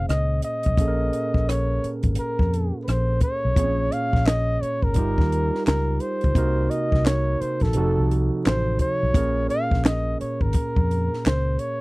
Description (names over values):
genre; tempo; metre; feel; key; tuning
R&B, neo-soul; 86 BPM; 4/4; swing 62% on 16ths; Bb minor; A4 = 441 Hz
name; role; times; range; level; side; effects
breathy flugelhorn; melody; 0.0-11.8 s; A4 to F5; -26 LUFS; equal; none
overdriven tine electric piano; accompaniment; 0.0-11.8 s; Bb2 to Db5; -27 LUFS; right 2 dB; none
vintage muted fingered electric bass; bass; 0.0-11.6 s; F1 to F2; -23 LUFS; equal; none
compact cocktail drum kit; drums; 0.1-11.8 s; handclaps, hi-hat, kick drum, rim click, snare drum; -22 LUFS; equal; none
room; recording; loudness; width
little or no reverb; dry, close 1970s-style studio recording; -20 LUFS; side -22 dB against mid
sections
0.0-3.6 A section; 3.6-11.8 B section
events
none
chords
0.0 Bbm7; 5.0 Eb13/G; 6.4 Cm7b5; 7.7 F7b9; 9.1 Bbm7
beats
0.07 | 0.77 1.47 2.17 2.87 | 3.56 4.26 4.96 5.66 | 6.35 7.05 7.75 8.45 | 9.14 9.84 10.54 11.24